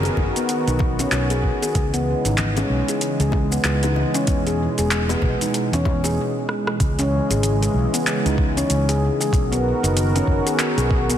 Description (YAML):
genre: organic downtempo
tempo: 95 BPM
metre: 4/4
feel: swing 60% on 16ths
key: C# dorian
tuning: A4 = 440 Hz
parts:
  - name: warm analog pad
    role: sustained chords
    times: 0.0-11.2 s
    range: B2 to A#4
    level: -24 LUFS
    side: right 1 dB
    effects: chorus, sidechain pumping
  - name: mellow fretless electric bass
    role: bass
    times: 0.0-11.1 s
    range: E1 to E2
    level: -22 LUFS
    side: equal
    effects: sidechain pumping
  - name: bongos and congas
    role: percussion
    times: 0.0-6.1 s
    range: none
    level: -32 LUFS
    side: left 4 dB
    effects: none
  - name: handpan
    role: arpeggios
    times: 0.1-11.2 s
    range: B3 to G#4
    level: -24 LUFS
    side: left 2 dB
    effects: ping-pong delay
  - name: deep house drum kit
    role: drums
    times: 0.1-11.2 s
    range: handclaps, hi-hat, rim click, shaker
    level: -26 LUFS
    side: equal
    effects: none
  - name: electronic kick drum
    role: drums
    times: 0.2-11.1 s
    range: none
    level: -22 LUFS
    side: equal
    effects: overdrive
room: moderate lush hall reverb, RT60 3.1 s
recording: dense, heavily limited modern master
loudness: -18 LUFS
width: side -10 dB against mid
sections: 0.0-6.8 A section; 6.8-11.2 B section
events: break 6.2-6.8; drum fill 6.5-6.8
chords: 0.0 Bmaj7; 1.7 C#m; 4.3 E; 6.8 C#m; 9.3 Bmaj7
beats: 0.49 1.12 | 1.75 2.38 3.01 3.64 | 4.28 4.91 5.54 6.17 | 6.80 7.43 8.06 8.70 | 9.33 9.96 10.59